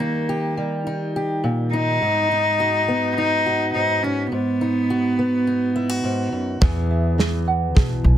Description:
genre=indie folk with a building arrangement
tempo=104 BPM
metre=4/4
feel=straight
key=unclear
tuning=A4 = 445 Hz
part: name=warm cello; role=melody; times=0.0-6.3 s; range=A#3 to D#4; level=-20 LUFS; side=equal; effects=none
part: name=fingerpicked acoustic archtop guitar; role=accompaniment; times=0.0-8.2 s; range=E2 to G#4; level=-24 LUFS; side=left 1 dB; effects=none
part: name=ukulele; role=arpeggios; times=6.6-8.2 s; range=G#4 to G#5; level=-27 LUFS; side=right 9 dB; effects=none
part: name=upright bass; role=bass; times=6.6-8.2 s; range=B1 to E2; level=-19 LUFS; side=equal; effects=none
part: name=loose indie drum kit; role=drums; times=6.6-7.9 s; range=kick drum, snare drum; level=-18 LUFS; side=equal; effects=none
room=little or no reverb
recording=dense, heavily limited modern master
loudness=-18 LUFS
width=side -11 dB against mid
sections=0.0-6.6 A section; 6.6-8.2 B section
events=build-up 6.6-8.2; drum fill 6.6-8.2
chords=0.0 D#; 2.0 G#m7; 6.6 Eadd9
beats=0.29 0.86 1.44 | 2.02 2.59 3.17 3.75 | 4.32 4.90 5.47 6.05 | 6.62 7.20 7.77

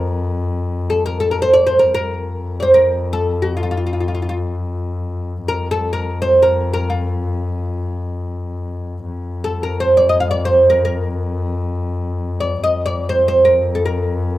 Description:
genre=Turkish makam ensemble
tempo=free time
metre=none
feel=none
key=F makam hicaz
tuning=A4 = 444 Hz
part: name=oud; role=melody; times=0.0-14.4 s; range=F4 to F5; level=-15 LUFS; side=right 1 dB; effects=none
part: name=rich double bass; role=drone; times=0.0-14.4 s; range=F2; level=-21 LUFS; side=left 2 dB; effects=none
room=little or no reverb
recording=recorded outdoors, with no room sound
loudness=-15 LUFS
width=side -15 dB against mid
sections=0.0-9.0 A section; 9.0-14.4 A section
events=none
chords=none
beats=free time

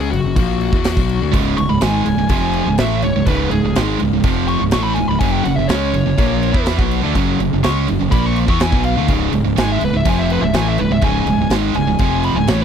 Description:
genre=heavy metal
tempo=124 BPM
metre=4/4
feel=straight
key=unclear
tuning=A4 = 440 Hz
part: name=high-gain lead guitar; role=melody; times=0.0-12.6 s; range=F#4 to C#6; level=-23 LUFS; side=left 3 dB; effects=distortion
part: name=sludgy distorted guitar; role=riff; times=0.0-12.6 s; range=C#2 to E4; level=-20 LUFS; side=left 11 dB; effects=overdrive
part: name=fuzz fingered electric bass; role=bass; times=0.0-12.6 s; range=C#1 to E2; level=-21 LUFS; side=equal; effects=overdrive
part: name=big rock drum kit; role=drums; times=0.1-12.6 s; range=crash cymbal, kick drum, snare drum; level=-21 LUFS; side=right 1 dB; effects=none
part: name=high-gain distorted guitar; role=riff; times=1.3-12.6 s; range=C#2 to E4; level=-19 LUFS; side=right 15 dB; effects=distortion
room=little or no reverb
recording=dry, close 1970s-style studio recording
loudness=-14 LUFS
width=side -8 dB against mid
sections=0.0-12.6 A section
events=lead electric guitar solo 0.0-12.6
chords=0.0 F#5; 1.3 C#; 5.2 F#5; 9.1 C#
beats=0.37 0.85 | 1.34 1.82 2.31 2.79 | 3.28 3.76 4.25 4.73 | 5.22 5.70 6.19 6.67 | 7.16 7.64 8.13 8.61 | 9.10 9.58 10.07 10.55 | 11.04 11.52 12.01 12.49

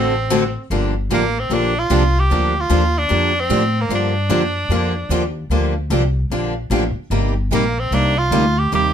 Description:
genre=acoustic string swing (jazz manouche)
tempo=150 BPM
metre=4/4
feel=swing 64% on 8ths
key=G minor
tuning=A4 = 440 Hz
part: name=edgy tenor saxophone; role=melody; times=0.0-8.9 s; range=Bb3 to G4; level=-20 LUFS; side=right 2 dB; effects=plate reverb
part: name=picked steel-string acoustic guitar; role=accompaniment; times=0.0-8.9 s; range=C3 to A4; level=-22 LUFS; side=left 6 dB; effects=none
part: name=picked steel-string acoustic guitar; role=accompaniment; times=0.0-8.9 s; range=C3 to A4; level=-23 LUFS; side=right 8 dB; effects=none
part: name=upright bass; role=bass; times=0.0-8.9 s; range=G1 to A2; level=-20 LUFS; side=left 1 dB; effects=none
room=light reverb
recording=none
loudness=-16 LUFS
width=side -8 dB against mid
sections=0.7-8.9 A section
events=none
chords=0.0 D7; 0.7 Gm7; 7.1 Cm7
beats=0.32 | 0.71 1.11 1.51 1.91 | 2.31 2.70 3.10 3.50 | 3.90 4.30 4.70 5.10 | 5.50 5.91 6.31 6.71 | 7.11 7.51 7.91 8.31 | 8.71

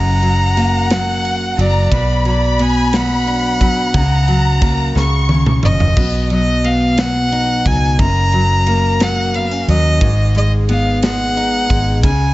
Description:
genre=six-eight pop ballad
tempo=59 BPM (dotted quarters)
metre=6/8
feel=straight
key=unclear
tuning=A4 = 438 Hz
part: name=warm violin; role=melody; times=0.0-12.3 s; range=D5 to A#5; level=-19 LUFS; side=equal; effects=none
part: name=rich studio violin section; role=second line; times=0.0-5.6 s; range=F#5 to C#6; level=-22 LUFS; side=left 2 dB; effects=none
part: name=picked steel-string acoustic guitar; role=accompaniment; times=0.0-12.3 s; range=F#2 to D#4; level=-19 LUFS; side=left 1 dB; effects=none
part: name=vintage muted fingered electric bass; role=bass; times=0.0-12.3 s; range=F#1 to D#2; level=-16 LUFS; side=equal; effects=none
part: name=modern studio drum kit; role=drums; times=0.2-12.2 s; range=crash cymbal, kick drum, ride cymbal, snare drum, toms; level=-19 LUFS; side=equal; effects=none
room=studio ambience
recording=nothing above 7.8 kHz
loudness=-12 LUFS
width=side -17 dB against mid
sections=0.0-6.0 A section; 6.0-12.3 A section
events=drum fill 5.0-6.0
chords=0.0 F#; 1.9 Bm; 3.9 F#/C#; 5.0 C#; 6.0 B; 8.0 F#; 10.0 G#m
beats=0.91 | 1.92 2.93 | 3.94 4.96 | 5.97 6.98 | 7.99 9.00 | 10.01 11.02 | 12.03

